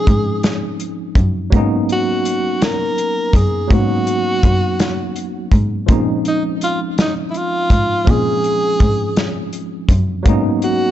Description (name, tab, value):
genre	slow six-eight R&B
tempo	55 BPM (dotted quarters)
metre	6/8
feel	straight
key	Bb minor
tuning	A4 = 440 Hz
part	warm tenor saxophone	melody	0.0-10.9 s	Eb4 to Bb4	-19 LUFS	equal	digital delay
part	tine electric piano	accompaniment	0.0-10.9 s	F3 to F4	-21 LUFS	equal	overdrive, fast stereo tremolo
part	rich cello	bass	0.0-10.9 s	Gb2 to Bb2	-20 LUFS	equal	none
part	warm soul drum kit	drums	0.1-10.8 s	hi-hat, kick drum, snare drum	-16 LUFS	equal	none
room	light reverb, small room ambience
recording	dark, warm production, nothing above 7.9 kHz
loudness	-14 LUFS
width	side -12 dB against mid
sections	0.0-10.9 A section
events	none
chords	0.0 Bbm11 (rootless); 1.5 Abm11; 5.9 Bbm11; 10.3 Abm11